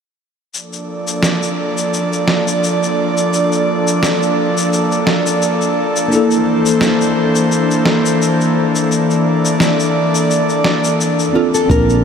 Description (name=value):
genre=sunset chillout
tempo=86 BPM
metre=4/4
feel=swing 54% on 16ths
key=Bb major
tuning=A4 = 438 Hz
part: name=airy breathy pad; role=sustained chords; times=0.5-12.0 s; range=D3 to D5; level=-14 LUFS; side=equal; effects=chorus
part: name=electronic shaker and snare drum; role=drums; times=0.5-12.0 s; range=none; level=-20 LUFS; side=equal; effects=studio reverb
part: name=mellow tine electric piano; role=accompaniment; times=6.1-12.0 s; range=Bb3 to A5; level=-18 LUFS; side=left 1 dB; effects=medium stereo tremolo, auto-pan, tape echo
part: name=nylon-string guitar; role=melody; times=11.4-12.0 s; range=F4 to Bb4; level=-17 LUFS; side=left 4 dB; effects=wide subtle chorus
part: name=sustaining fretless electric bass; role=bass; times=11.7-12.0 s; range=Bb1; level=-13 LUFS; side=right 1 dB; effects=lush chorus
part: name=electronic kick drum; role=drums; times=11.7-11.8 s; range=none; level=-17 LUFS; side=right 1 dB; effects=studio reverb
room=wet huge ambient reverb, RT60 8.9 s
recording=dreamy mix soaked in reverb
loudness=-12 LUFS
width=side -7 dB against mid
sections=0.5-11.7 A section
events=none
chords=0.5 Bbmaj7; 6.1 C13; 11.3 Bbmaj7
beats=| 0.54 1.23 1.93 2.63 | 3.33 4.02 4.72 5.42 | 6.12 6.81 7.51 8.21 | 8.91 9.60 10.30 11.00 | 11.70